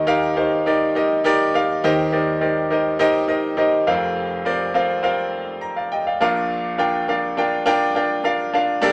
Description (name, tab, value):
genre	pop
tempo	103 BPM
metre	4/4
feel	straight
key	Bb major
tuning	A4 = 442 Hz
part	bright concert grand piano	solo	0.0-8.9 s	F1 to Bb5	-20 LUFS	equal	none
room	wet studio reverb, RT60 0.6 s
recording	none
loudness	-20 LUFS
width	mono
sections	0.0-1.8 A section; 1.8-8.9 B section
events	grand piano fill 5.3-6.5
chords	0.0 Eb; 1.8 Eb6; 3.9 Fsus4; 6.2 Bb